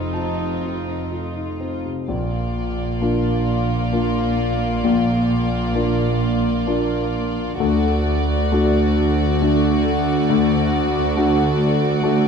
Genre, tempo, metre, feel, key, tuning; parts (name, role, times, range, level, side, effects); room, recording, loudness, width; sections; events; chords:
cinematic, emotional film score for orchestra; 66 BPM; 3/4; uneven beats, rubato; A4 = 440 Hz
warm studio violin section; melody; 0.0-12.3 s; F4 to D5; -31 LUFS; equal
dark studio violin section; second line; 0.0-12.3 s; Eb4 to F#4; -27 LUFS; left 2 dB
dark concert grand piano; accompaniment; 0.0-12.3 s; Bb1 to B5; -21 LUFS; left 1 dB
warm chamber viola section; accompaniment; 0.0-12.3 s; A3 to C4; -27 LUFS; left 5 dB
dark symphonic double bass section; bass; 0.0-12.3 s; F1 to D2; -24 LUFS; right 3 dB
warm symphonic cello section; bass; 0.0-12.3 s; D2 to Bb2; -26 LUFS; right 4 dB
moderate scoring stage reverb, RT60 1.6 s; dark, warm production; -17 LUFS; side -6 dB against mid
0.0-2.1 A section; 2.1-12.3 B section
0.0 F7; 2.1 Bb; 7.6 D